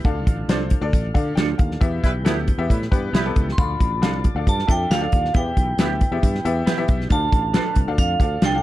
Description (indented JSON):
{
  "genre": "uptempo 1960s-style soul",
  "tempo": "136 BPM",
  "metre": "4/4",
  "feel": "straight",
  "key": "D dorian",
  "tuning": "A4 = 444 Hz",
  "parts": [
    { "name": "tonewheel organ", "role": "sustained chords", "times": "0.0-8.6 s", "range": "D3 to A4", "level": "-33 LUFS", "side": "right 1 dB", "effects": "slow rotary speaker" },
    { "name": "sustaining fretless electric bass", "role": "bass", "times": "0.0-8.6 s", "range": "A1 to E3", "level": "-25 LUFS", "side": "equal", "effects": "none" },
    { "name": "natural country drum kit", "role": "drums", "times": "0.0-8.5 s", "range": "hi-hat, kick drum, snare drum", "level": "-20 LUFS", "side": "equal", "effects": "none" },
    { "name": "bright upright piano", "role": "accompaniment", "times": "0.1-8.6 s", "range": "D3 to G5", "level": "-28 LUFS", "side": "left 5 dB", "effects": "none" },
    { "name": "electric guitar through a small old amp", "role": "stabs", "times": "0.5-8.5 s", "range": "B3 to A4", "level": "-26 LUFS", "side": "right 7 dB", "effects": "analog chorus" },
    { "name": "warm horn section", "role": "second line", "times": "2.0-3.5 s", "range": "G3 to B4", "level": "-29 LUFS", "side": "right 1 dB", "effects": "none" },
    { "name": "vibraphone with hard mallets", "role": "melody", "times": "3.5-8.6 s", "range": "F5 to C6", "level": "-25 LUFS", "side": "right 2 dB", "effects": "none" }
  ],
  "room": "little or no reverb",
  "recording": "dark, warm production",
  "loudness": "-18 LUFS",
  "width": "side -15 dB against mid",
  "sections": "0.0-8.6 A section",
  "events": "band accent 1.8-3.6",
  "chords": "0.1 Dm; 1.8 Em; 3.6 Dm; 5.3 Em; 7.1 Dm"
}